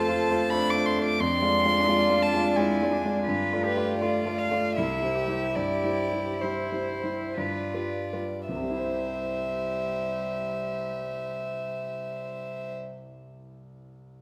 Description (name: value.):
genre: classical, slow romantic movement for piano quartet.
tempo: 51-90 BPM.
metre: 3/4.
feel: rubato.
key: C major.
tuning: A4 = 437 Hz.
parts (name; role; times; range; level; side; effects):
warm violin; melody; 0.0-12.7 s; B4 to D6; -32 LUFS; equal; none.
rich cello; second line; 0.0-12.7 s; G3 to B4; -37 LUFS; equal; none.
rich violin; second line; 0.0-12.7 s; D4 to C5; -34 LUFS; equal; none.
clear concert grand piano; accompaniment; 0.0-14.2 s; C2 to E5; -32 LUFS; equal; none.
room: wet recital hall reverb, RT60 1.6 s.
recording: none.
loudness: -27 LUFS.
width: mono.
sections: 0.0-8.5 A section; 8.5-14.2 B section.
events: slowing down 2.2-8.5.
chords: 0.0 F; 1.2 Dm7b5/F; 3.3 Gsus2; 4.8 C; 5.5 C/G; 7.4 G7; 8.5 C.